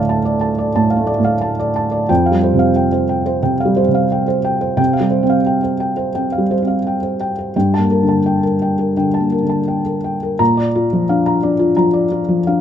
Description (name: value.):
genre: neoclassical minimalist piano.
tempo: 88 BPM.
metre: 4/4.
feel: rubato.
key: unclear.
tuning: A4 = 440 Hz.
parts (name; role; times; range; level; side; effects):
felt-muted upright piano; solo; 0.0-12.6 s; D2 to Bb5; -14 LUFS; equal; none.
room: light reverb.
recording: minimal, uncompressed stereo recording.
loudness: -14 LUFS.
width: side -9 dB against mid.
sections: 0.0-10.4 A section; 10.4-12.6 B section.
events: none.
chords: 0.0 Dm; 2.1 Fsus2; 4.8 Csus4; 7.5 Gmadd9; 10.4 Bb.